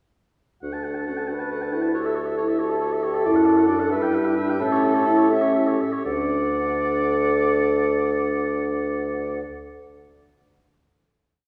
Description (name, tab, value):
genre	quick classical-period movement for wind quintet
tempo	77-93 BPM (dotted quarters)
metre	6/8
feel	rubato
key	D major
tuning	A4 = 437 Hz
part	clear oboe	second line	0.6-9.4 s	C#5 to A5	-32 LUFS	equal	none
part	dark French horn	accompaniment	0.6-9.4 s	C#4 to G4	-26 LUFS	equal	none
part	dark clarinet	accompaniment	0.6-9.4 s	E4 to A4	-32 LUFS	equal	none
part	mellow bassoon	bass	0.6-9.4 s	D2 to A2	-28 LUFS	equal	none
part	silver concert flute	melody	1.3-9.4 s	A4 to F#5	-29 LUFS	equal	none
room	wet concert hall reverb, RT60 1.9 s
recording	heard from further back in the room, studio reverb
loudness	-22 LUFS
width	mono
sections	0.6-6.0 A section; 6.0-9.0 final chord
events	slowing down 2.6-6.0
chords	0.6 D; 2.0 A7/D; 3.3 D/F#; 3.9 Em/G; 4.6 A7; 6.0 D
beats	| 0.63 1.30 | 1.95 2.60 | 3.26 3.91 | 4.60 5.30 | 6.05 6.78 | 7.50 8.22